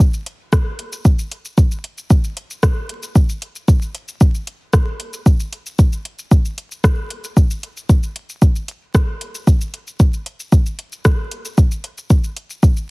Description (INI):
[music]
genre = techno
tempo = 114 BPM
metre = 4/4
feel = straight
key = none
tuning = none
[part]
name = deep house drum kit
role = drums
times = 0.0-12.9 s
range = hi-hat, rim click, shaker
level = -26 LUFS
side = equal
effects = small room ambience
[part]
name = electronic kick drum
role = drums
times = 0.0-12.7 s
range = none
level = -12 LUFS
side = equal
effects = small room ambience
[sound]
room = digital ambience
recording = heavily compressed radio sound, multiband compression, vinyl crackle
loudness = -15 LUFS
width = side -29 dB against mid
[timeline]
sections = 0.0-12.9 A section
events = none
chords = none